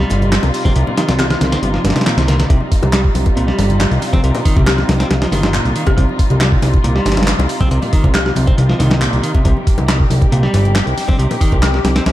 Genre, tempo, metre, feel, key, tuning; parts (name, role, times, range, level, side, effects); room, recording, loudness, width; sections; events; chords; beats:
breakbeat, breaks; 138 BPM; 4/4; straight; C minor; A4 = 440 Hz
muted studio string section; sustained chords; 0.0-12.1 s; C3 to G4; -22 LUFS; equal; sidechain pumping
clean electric guitar; riff; 0.0-12.1 s; Bb2 to C4; -21 LUFS; equal; overdrive, spring reverb, digital delay
fat analog bass; bass; 0.0-12.1 s; G1 to C2; -15 LUFS; equal
dusty soul sampler-style drum kit; drums; 0.0-12.1 s; hi-hat, kick drum, snare drum; -16 LUFS; equal
house drum kit; drums; 0.1-12.1 s; handclaps, hi-hat; -25 LUFS; equal
congas; percussion; 0.1-12.1 s; -24 LUFS; left 2 dB
folk marimba with medium hard mallets; melody; 1.2-1.4, 4.7-8.3, 11.6-11.8 s; G4; -25 LUFS; left 3 dB; small speaker sound, vintage 12-bit sampler grit, digital delay
little or no reverb; dark, warm production; -12 LUFS; side -14 dB against mid
0.0-12.1 A section
0.0 Cm
0.32 | 0.76 1.19 1.63 2.06 | 2.50 2.93 3.37 3.80 | 4.24 4.67 5.11 5.54 | 5.97 6.41 6.84 7.28 | 7.71 8.15 8.58 9.02 | 9.45 9.89 10.32 10.76 | 11.19 11.63 12.06